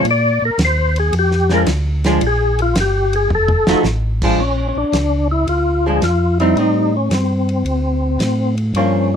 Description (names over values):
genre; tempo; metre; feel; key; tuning
soul jazz organ trio; 110 BPM; 4/4; swing 69% on 8ths; unclear; A4 = 436 Hz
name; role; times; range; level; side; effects
percussive tonewheel organ; melody; 0.0-9.1 s; C4 to D5; -17 LUFS; left 2 dB; slow rotary speaker, overdrive, chorus vibrato
archtop guitar, miked and amplified; accompaniment; 0.0-9.1 s; F3 to Gb4; -17 LUFS; right 2 dB; none
mellow tonewheel organ; bass; 0.0-9.2 s; F1 to Bb2; -18 LUFS; equal; slow rotary speaker
warm soul drum kit; drums; 0.0-8.9 s; crash cymbal, hi-hat, kick drum, ride cymbal, snare drum, toms; -23 LUFS; equal; none
room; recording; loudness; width
little or no reverb; close, detailed microphones; -14 LUFS; side -8 dB against mid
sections
0.0-4.4 A section; 4.4-9.2 B section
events
tonewheel organ solo 0.0-4.4; drum fill 3.3-3.9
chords
0.1 Bb7; 3.3 F7b9; 4.4 Bb; 6.6 Am7b5; 7.7 D5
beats
| 0.05 0.59 1.14 1.68 | 2.22 2.76 3.31 3.85 | 4.39 4.94 5.48 6.03 | 6.57 7.12 7.66 8.21 | 8.75